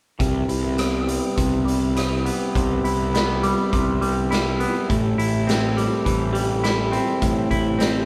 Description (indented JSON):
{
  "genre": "psychedelic rock",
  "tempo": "103 BPM",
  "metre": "4/4",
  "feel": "straight",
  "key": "unclear",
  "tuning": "A4 = 439 Hz",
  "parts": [
    { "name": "combo organ", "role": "sustained chords", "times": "0.2-8.1 s", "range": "G4 to E5", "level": "-31 LUFS", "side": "equal", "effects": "spring reverb, low-pass filter" },
    { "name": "clean electric guitar", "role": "riff", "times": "0.2-8.1 s", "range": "A2 to E4", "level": "-25 LUFS", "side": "equal", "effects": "phaser, low-pass filter" },
    { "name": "fuzz picked electric bass", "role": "bass", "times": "0.2-8.1 s", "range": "A1 to C2", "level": "-28 LUFS", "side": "equal", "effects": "overdrive" },
    { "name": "raw garage drum kit", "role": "drums", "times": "0.2-7.9 s", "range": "hi-hat, kick drum, rim click, snare drum", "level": "-28 LUFS", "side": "equal", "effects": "none" }
  ],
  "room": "moderate large studio reverb, RT60 0.9 s",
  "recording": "band playing live in one room",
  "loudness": "-21 LUFS",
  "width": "mono",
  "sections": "0.2-8.1 A section",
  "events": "filter sweep 0.2-8.1",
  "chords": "0.2 Cmaj7; 4.9 Am7"
}